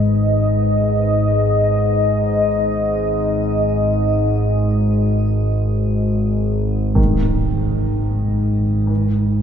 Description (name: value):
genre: dark ambient drone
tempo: free time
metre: none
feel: none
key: unclear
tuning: A4 = 442 Hz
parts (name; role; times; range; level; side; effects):
- deep dark ambient pad; sustained chords; 0.0-7.0 s; D#4 to D#5; -21 LUFS; left 1 dB; chorus, built-in reverb, shimmer reverb
- dark baby grand piano; arpeggios; 0.0-9.4 s; C#3 to D#3; -24 LUFS; right 1 dB; ping-pong delay, shimmer reverb
- analog drone; drone; 0.0-9.4 s; G#1 to G#2; -17 LUFS; equal; chorus
- bronze singing bowl; texture; 0.0-7.0 s; none; barely audible; none; none
- impact; percussion; 7.0-7.2 s; none; -22 LUFS; right 1 dB; low-pass filter on sfx
room: wet cathedral reverb, RT60 7.1 s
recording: none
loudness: -15 LUFS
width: side -8 dB against mid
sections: 0.0-7.0 A section; 7.0-9.4 B section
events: none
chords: 0.0 B; 7.0 G#5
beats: free time